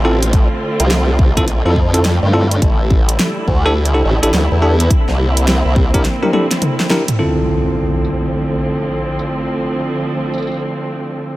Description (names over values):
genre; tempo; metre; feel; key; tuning
glitch hop; 105 BPM; 4/4; swing 63% on 16ths; D minor; A4 = 440 Hz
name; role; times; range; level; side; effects
dark studio string section; sustained chords; 0.0-11.4 s; D3 to F4; -21 LUFS; right 1 dB; sidechain pumping
bell-like tine electric piano; stabs; 0.0-11.4 s; D3 to Bb4; -20 LUFS; equal; sidechain pumping, low-pass filter, dub echo
formant-sweep wobble bass; bass; 0.0-6.0 s; A1 to G2; -14 LUFS; equal; chorus, tube saturation
pop drum kit; drums; 0.2-10.6 s; hi-hat, rim click, snare drum, tambourine, toms; -19 LUFS; equal; low-pass filter on hats, low-pass filter on snare, low-pass filter on toms, low-pass filter on perc, low-pass filter on room
electronic kick drum; drums; 0.3-6.0 s; none; -14 LUFS; equal; none
impact; sound effects; 7.2-9.5 s; none; -23 LUFS; equal; none
room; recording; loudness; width
little or no reverb; none; -13 LUFS; side -17 dB against mid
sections
0.0-7.2 A section; 7.2-11.4 B section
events
drum fill 6.0-7.2; band accent 6.9; impact 7.2-9.5; filter sweep on tine electric piano 7.2-11.4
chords
0.0 Dm7; 2.6 A7sus4; 4.9 C9; 7.2 Dm7